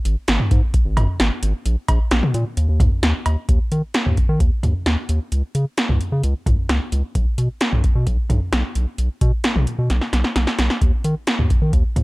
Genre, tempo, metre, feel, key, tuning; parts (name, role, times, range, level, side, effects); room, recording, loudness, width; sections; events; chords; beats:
synth-pop; 131 BPM; 4/4; straight; A4 = 440 Hz
round analog bass; bass; 0.1-12.0 s; Ab1 to Eb3; -19 LUFS; equal
electro analog drum machine; drums; 0.1-12.0 s; cowbell, hi-hat, kick drum, snare drum, toms; -18 LUFS; equal
light reverb, digital ambience; -17 LUFS; side -22 dB against mid
0.0-3.5 A section; 3.5-12.0 B section
drum fill 9.9-10.8
0.28 0.74 1.20 | 1.66 2.11 2.57 3.03 | 3.49 3.95 4.40 4.86 | 5.32 5.78 6.24 6.69 | 7.15 7.61 8.07 8.53 | 8.98 9.44 9.90 10.36 | 10.82 11.27 11.73